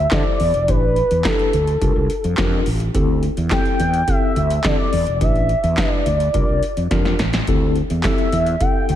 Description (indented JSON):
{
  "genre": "early-eighties boogie funk",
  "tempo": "106 BPM",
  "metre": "4/4",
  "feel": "straight",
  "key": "unclear",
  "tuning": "A4 = 440 Hz",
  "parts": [
    { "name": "gliding portamento lead", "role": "melody", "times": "0.0-9.0 s", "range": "A4 to G5", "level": "-21 LUFS", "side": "equal", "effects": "chorus, slapback echo" },
    { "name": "fretless electric bass", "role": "bass", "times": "0.0-9.0 s", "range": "E1 to D3", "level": "-20 LUFS", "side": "equal", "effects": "analog chorus" },
    { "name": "mellow tine electric piano", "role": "accompaniment", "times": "0.1-8.9 s", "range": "C4 to C5", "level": "-24 LUFS", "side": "left 3 dB", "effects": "medium stereo tremolo, slapback echo" },
    { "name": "electro analog drum machine", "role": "drums", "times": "0.1-9.0 s", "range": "handclaps, hi-hat, kick drum, snare drum", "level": "-21 LUFS", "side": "equal", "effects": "none" }
  ],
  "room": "light reverb, digital ambience",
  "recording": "none",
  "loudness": "-16 LUFS",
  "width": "side -11 dB against mid",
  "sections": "0.0-9.0 A section",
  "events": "drum fill 6.9-7.5",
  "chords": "0.0 D9sus4; 0.7 A9sus4; 1.8 C9sus4; 2.9 D9sus4; 5.2 A9sus4; 6.3 C9sus4; 7.5 D9sus4",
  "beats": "0.12 | 0.68 1.25 1.82 2.38 | 2.95 3.51 4.08 4.65 | 5.21 5.78 6.34 6.91 | 7.48 8.04 8.61"
}